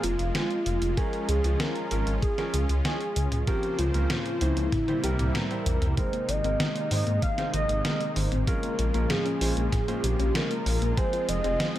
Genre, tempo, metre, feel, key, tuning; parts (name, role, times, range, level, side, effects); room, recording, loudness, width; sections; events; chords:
synthwave; 96 BPM; 4/4; straight; A4 = 435 Hz
warm velvety synth lead; melody; 0.0-11.8 s; E4 to F5; -30 LUFS; equal; chorus, digital delay
soft supersaw; sustained chords; 0.0-11.8 s; C3 to C5; -34 LUFS; equal; sidechain pumping
dark detuned saw bass; bass; 0.0-11.6 s; F1 to Ab2; -27 LUFS; equal
detuned 8-bit digital drum machine; drums; 0.0-11.8 s; hi-hat, snare drum, toms; -31 LUFS; equal
clear grand piano; stabs; 0.4-11.8 s; F3 to C5; -35 LUFS; right 2 dB; low-pass filter
electronic kick drum; drums; 1.0-11.1 s; -28 LUFS; equal
thumb-piano-like synth pluck; arpeggios; 6.0-11.8 s; Eb3 to F4; -34 LUFS; left 3 dB; chorus, vintage 12-bit sampler grit, digital delay
light reverb, digital ambience; -24 LUFS; side -13 dB against mid
0.0-6.0 A section; 6.0-11.8 B section
drum fill 4.7-6.0; filter sweep on synth arpeggio sound 6.0-11.8; filter sweep on grand piano 6.0-11.8
0.0 Fm; 1.0 Db; 3.5 Bbmadd9/Db; 4.7 C7; 6.0 Abadd9; 8.5 Bbm7; 11.0 Fm